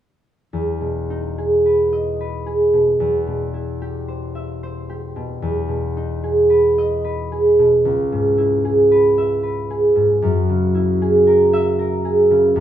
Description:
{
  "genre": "classical, solo harp piece",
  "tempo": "75 BPM",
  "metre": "3/4",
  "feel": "uneven beats, rubato",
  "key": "E lydian",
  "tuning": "A4 = 440 Hz",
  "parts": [
    { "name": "concert harp", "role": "solo", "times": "0.5-12.6 s", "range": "C#2 to E5", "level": "-15 LUFS", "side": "right 1 dB", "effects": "none" }
  ],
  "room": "wet stone room reverb, RT60 0.9 s",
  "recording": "heard from further back in the room",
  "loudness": "-15 LUFS",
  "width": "side -11 dB against mid",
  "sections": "0.5-12.6 A section",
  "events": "none",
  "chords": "0.5 Emaj7; 3.0 Cmaj7/E; 5.4 Emaj7; 7.9 C#m7; 10.2 F#9",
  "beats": "| 0.53 1.38 2.19 | 2.99 3.82 4.63 | 5.43 6.24 7.05 | 7.86 8.65 9.44 | 10.22 11.01 11.79 | 12.56"
}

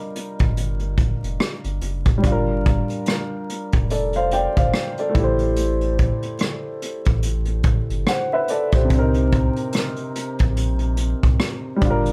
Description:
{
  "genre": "lo-fi hip hop",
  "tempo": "72 BPM",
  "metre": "4/4",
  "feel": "swing 59% on 16ths",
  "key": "G minor",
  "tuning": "A4 = 439 Hz",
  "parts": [
    { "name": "warm upright piano", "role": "accompaniment", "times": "0.0-12.1 s", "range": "C3 to G5", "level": "-26 LUFS", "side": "equal", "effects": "cassette tape" },
    { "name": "vintage brush drum kit", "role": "drums", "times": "0.2-12.1 s", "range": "hi-hat, kick drum, rim click", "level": "-23 LUFS", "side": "equal", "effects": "none" },
    { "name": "sub bass with octave", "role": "bass", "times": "0.4-12.1 s", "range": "F1 to C2", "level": "-26 LUFS", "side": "equal", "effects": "none" }
  ],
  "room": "light reverb",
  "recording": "vinyl crackle",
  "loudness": "-21 LUFS",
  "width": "mono",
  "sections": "0.0-2.2 A section; 2.2-12.1 A section",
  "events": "none",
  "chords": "0.0 Gm7; 5.2 Am7; 8.9 Cm7",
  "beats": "0.57 1.40 | 2.23 3.07 3.90 4.74 | 5.57 6.40 7.24 8.07 | 8.90 9.73 10.57 11.40"
}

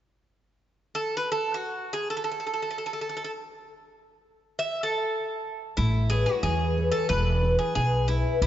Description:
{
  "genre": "greek folk",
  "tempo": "free time",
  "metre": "none",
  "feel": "none",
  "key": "A major",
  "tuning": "A4 = 440 Hz",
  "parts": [
    { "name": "Greek bouzouki", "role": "melody", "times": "0.9-8.5 s", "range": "E4 to E5", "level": "-28 LUFS", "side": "right 1 dB", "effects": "none" },
    { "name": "fingerpicked steel-string acoustic guitar", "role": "accompaniment", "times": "5.8-8.5 s", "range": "B2 to C#5", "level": "-27 LUFS", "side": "left 1 dB", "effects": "ensemble chorus" },
    { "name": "upright bass", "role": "bass", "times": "5.8-8.5 s", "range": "E1 to E2", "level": "-25 LUFS", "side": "equal", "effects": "none" }
  ],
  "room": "wet plate reverb, RT60 2.7 s",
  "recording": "dreamy mix soaked in reverb, nothing above 7.7 kHz",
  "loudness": "-24 LUFS",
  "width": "side -12 dB against mid",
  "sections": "0.5-5.8 A section; 5.8-8.5 B section",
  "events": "none",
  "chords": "0.5 N.C.; 5.8 Aadd9; 7.1 E",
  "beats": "free time"
}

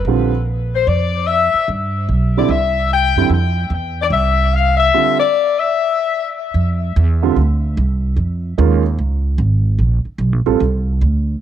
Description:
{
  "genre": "jazz, big band swing",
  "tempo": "148 BPM",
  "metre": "4/4",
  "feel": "swing 65% on 8ths",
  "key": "unclear",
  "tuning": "A4 = 440 Hz",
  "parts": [
    { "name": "upright bass", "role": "bass", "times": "0.0-11.4 s", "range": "Ab1 to G2", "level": "-16 LUFS", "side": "right 1 dB", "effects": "none" },
    { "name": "warm grand piano", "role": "accompaniment", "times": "0.1-10.6 s", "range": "D3 to A4", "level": "-18 LUFS", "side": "right 12 dB", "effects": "none" },
    { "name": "warm saxophone section", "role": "melody", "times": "0.7-6.4 s", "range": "C5 to G5", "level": "-17 LUFS", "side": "left 7 dB", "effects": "tape echo" }
  ],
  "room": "light reverb, small room ambience",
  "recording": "1960s-style stereo with parts hard left and right",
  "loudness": "-14 LUFS",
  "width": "side -10 dB against mid",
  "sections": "0.0-6.6 A section; 6.6-11.4 B section",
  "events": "none",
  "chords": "0.1 Bbadd9; 1.7 G5; 2.5 C; 3.3 F5; 4.9 G5; 5.7 N.C.; 6.6 F5; 8.2 Dbadd9; 9.8 Bbmaj9",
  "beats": "| 0.06 0.46 0.87 1.27 | 1.68 2.09 2.49 2.90 | 3.31 3.71 4.12 4.52 | 4.93 5.34 5.74 6.15 | 6.55 6.96 7.36 7.77 | 8.17 8.58 8.98 9.39 | 9.79 10.20 10.60 11.01"
}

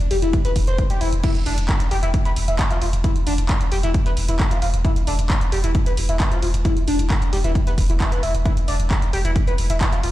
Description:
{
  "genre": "driving peak-time techno",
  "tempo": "133 BPM",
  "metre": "4/4",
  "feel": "straight",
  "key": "E phrygian",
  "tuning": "A4 = 438 Hz",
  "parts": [
    { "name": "punchy analog drum machine", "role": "drums", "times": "0.0-10.1 s", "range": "crash cymbal, handclaps, hi-hat", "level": "-28 LUFS", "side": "right 1 dB", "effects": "sidechain pumping on hats, sidechain pumping on cymbals" },
    { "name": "overdriven synth lead", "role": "riff", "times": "0.1-10.1 s", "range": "D4 to C5", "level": "-25 LUFS", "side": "left 1 dB", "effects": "phaser, tube saturation, sidechain pumping, tape echo" },
    { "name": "saturated sub bass", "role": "bass", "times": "0.1-10.1 s", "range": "E1", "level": "-22 LUFS", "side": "equal", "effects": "tube saturation, sidechain pumping, low-pass filter" },
    { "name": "electronic kick drum", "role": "drums", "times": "0.3-9.9 s", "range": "none", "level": "-20 LUFS", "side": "equal", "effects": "none" }
  ],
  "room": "little or no reverb",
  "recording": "played on a big sound system in a bare room, large studio reverb",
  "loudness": "-17 LUFS",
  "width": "side -15 dB against mid",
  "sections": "0.0-10.1 A section",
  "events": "none",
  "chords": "0.0 E5",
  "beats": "0.34 0.79 | 1.24 1.69 2.14 2.59 | 3.04 3.49 3.94 4.40 | 4.85 5.30 5.75 6.20 | 6.65 7.10 7.55 8.01 | 8.46 8.91 9.36 9.81"
}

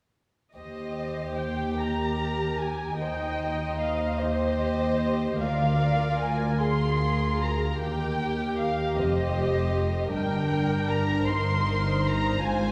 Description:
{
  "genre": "classical, slow romantic movement for string orchestra",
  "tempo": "47-53 BPM (dotted quarters)",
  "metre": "6/8",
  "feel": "rubato",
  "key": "Eb major",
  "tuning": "A4 = 440 Hz",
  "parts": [
    { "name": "dark studio violin section", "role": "melody", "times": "0.5-12.7 s", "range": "Eb5 to C6", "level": "-34 LUFS", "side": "equal", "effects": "none" },
    { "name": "warm symphonic violin section", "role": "second line", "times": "0.6-12.7 s", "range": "D4 to D5", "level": "-34 LUFS", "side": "equal", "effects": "none" },
    { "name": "dark symphonic double bass section", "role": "bass", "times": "0.6-12.7 s", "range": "F1 to Eb2", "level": "-32 LUFS", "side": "equal", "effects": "none" },
    { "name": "warm symphonic cello section", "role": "bass", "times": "0.6-12.7 s", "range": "D2 to Ab2", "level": "-33 LUFS", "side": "equal", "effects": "none" },
    { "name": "dark chamber viola section", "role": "accompaniment", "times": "1.8-12.7 s", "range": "G4 to Eb5", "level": "-34 LUFS", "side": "equal", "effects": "none" }
  ],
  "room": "wet scoring stage reverb, RT60 1.9 s",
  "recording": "heard from further back in the room",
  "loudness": "-27 LUFS",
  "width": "mono",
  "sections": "0.6-12.7 A section",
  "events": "none",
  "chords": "0.6 Eb; 3.0 Eb6; 5.4 Bb7/D; 7.8 Eb; 10.1 Gm",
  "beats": "| 0.56 1.81 | 3.01 4.21 | 5.43 6.63 | 7.81 8.99 | 10.14 11.29 | 12.44"
}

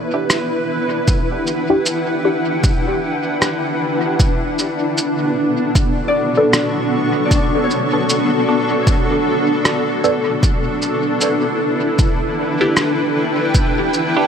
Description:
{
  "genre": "ambient dub",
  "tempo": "77 BPM",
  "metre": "4/4",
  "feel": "swing 58% on 16ths",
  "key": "E dorian",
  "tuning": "A4 = 440 Hz",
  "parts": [
    { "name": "granular cloud pad", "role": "sustained chords", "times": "0.0-14.3 s", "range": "B3 to C#6", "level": "-17 LUFS", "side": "equal", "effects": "built-in reverb, vintage 12-bit sampler grit" },
    { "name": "Celtic harp", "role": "arpeggios", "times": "0.0-1.3, 6.1-10.1 s", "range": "D4 to D5", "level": "-26 LUFS", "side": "left 3 dB", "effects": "dub echo" },
    { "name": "filtered dub chord stab", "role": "stabs", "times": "0.1-14.3 s", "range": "B3 to A4", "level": "-22 LUFS", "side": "equal", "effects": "phaser, cassette tape, dub echo" },
    { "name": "electronic rim click and cabasa", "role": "drums", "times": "0.3-14.1 s", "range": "none", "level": "-20 LUFS", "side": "equal", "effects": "dub echo" },
    { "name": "electronic kick drum", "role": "drums", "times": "1.1-13.7 s", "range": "none", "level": "-16 LUFS", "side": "equal", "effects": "overdrive" }
  ],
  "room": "light reverb, digital ambience",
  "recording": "none",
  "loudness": "-15 LUFS",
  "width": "side -7 dB against mid",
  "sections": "0.0-14.3 A section",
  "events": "none",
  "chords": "0.0 Em7; 4.2 Bm7; 10.4 Em7",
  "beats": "0.30 | 1.08 1.86 2.64 3.42 | 4.19 4.97 5.75 6.53 | 7.31 8.09 8.87 9.65 | 10.43 11.21 11.99 12.77 | 13.54"
}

